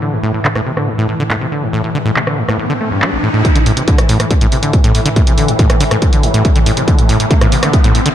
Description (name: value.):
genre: driving peak-time techno.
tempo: 140 BPM.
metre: 4/4.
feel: straight.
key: A minor.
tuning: A4 = 439 Hz.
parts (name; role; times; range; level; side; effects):
acid bass, saw; riff; 0.0-8.1 s; A1 to A3; -16 LUFS; equal; sidechain pumping.
swarming drone; drone; 0.0-8.1 s; A2 to E3; -19 LUFS; left 1 dB; built-in reverb, sidechain pumping.
downlifter and riser; sound effects; 1.6-8.1 s; none; -23 LUFS; equal; none.
punchy analog drum machine; drums; 0.4-8.1 s; handclaps, hi-hat, rim click; -19 LUFS; equal; sidechain pumping on hats, low-pass filter on hats, low-pass filter on snare, low-pass filter on room.
electronic kick drum; drums; 3.4-7.8 s; none; -12 LUFS; equal; none.
room: light reverb.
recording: none.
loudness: -10 LUFS.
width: side -11 dB against mid.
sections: 0.0-3.4 A section; 3.4-8.1 B section.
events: riser 1.6-3.4, 3.4-8.1; build-up 3.4-8.1; filter sweep on acid bass 3.4-8.1.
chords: 0.0 A5.